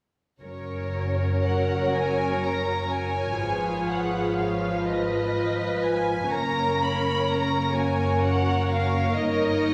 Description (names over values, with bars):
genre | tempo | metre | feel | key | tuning
classical, slow romantic movement for string orchestra | 41 BPM (dotted quarters) | 6/8 | rubato | F# major | A4 = 440 Hz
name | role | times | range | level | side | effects
dark studio violin section | melody | 0.4-9.7 s | C#5 to B5 | -31 LUFS | equal | none
rich studio violin section | second line | 0.4-9.7 s | A#4 to C#5 | -34 LUFS | equal | none
warm studio viola section | accompaniment | 0.4-9.7 s | F3 to F4 | -30 LUFS | equal | none
dark studio double bass section | bass | 0.4-9.7 s | F#1 to Ab1 | -31 LUFS | equal | none
warm studio cello section | bass | 0.4-9.7 s | F#4 to Cb5 | -34 LUFS | equal | none
room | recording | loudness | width
wet scoring stage reverb, RT60 1.5 s | heard from further back in the room | -25 LUFS | mono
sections
0.4-9.7 A section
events
none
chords
0.4 F#; 3.4 Fdim/Ab; 6.3 F#; 9.2 D#7/G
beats
| 0.43 1.92 | 3.39 4.86 | 6.32 7.75 | 9.18